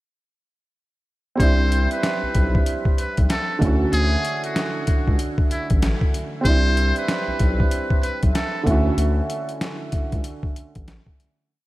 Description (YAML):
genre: hip hop, boom-bap hip-hop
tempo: 95 BPM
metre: 4/4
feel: swing 62% on 16ths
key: unclear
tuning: A4 = 442 Hz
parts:
  - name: trumpet with metal mute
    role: melody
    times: 1.4-8.6 s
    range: E4 to C5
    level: -27 LUFS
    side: equal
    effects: high-pass filter, low-pass filter, tape echo
  - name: dark upright piano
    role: accompaniment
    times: 1.4-11.5 s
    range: D3 to F#4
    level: -25 LUFS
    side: right 2 dB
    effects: cassette tape, high-pass filter, low-pass filter
  - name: saturated sub bass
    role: bass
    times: 1.4-11.0 s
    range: A1 to D2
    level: -21 LUFS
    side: equal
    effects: none
  - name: boom bap sampler-style drum kit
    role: drums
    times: 1.4-11.4 s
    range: hi-hat, kick drum, snare drum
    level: -22 LUFS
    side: equal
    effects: none
room: light reverb, small room ambience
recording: none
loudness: -18 LUFS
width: side -18 dB against mid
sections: 1.4-11.5 hook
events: break 9.0-11.5; fade-out 9.0-11.5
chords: 1.4 Cmaj9; 3.6 Dmaj9; 6.5 Cmaj9; 8.7 Dmaj9